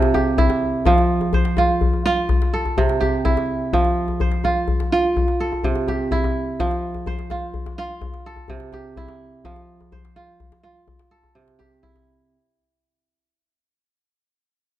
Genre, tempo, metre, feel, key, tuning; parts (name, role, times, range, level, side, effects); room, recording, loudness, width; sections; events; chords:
west african traditional, West African string and xylophone music; 84 BPM (dotted quarters); 12/8; straight; F major; A4 = 440 Hz
kora; arpeggios; 0.0-13.4 s; C3 to C5; -20 LUFS; right 3 dB
djembe; percussion; 0.0-12.1 s; -22 LUFS; left 2 dB
moderate recital hall reverb, RT60 1.6 s; dark, warm production; -18 LUFS; side -13 dB against mid
0.0-12.3 A section
fade-out 0.0-12.3
0.0 C; 0.9 F5; 2.3 C; 3.7 F5; 5.2 C; 6.6 F5; 8.0 C; 9.4 F5; 10.9 C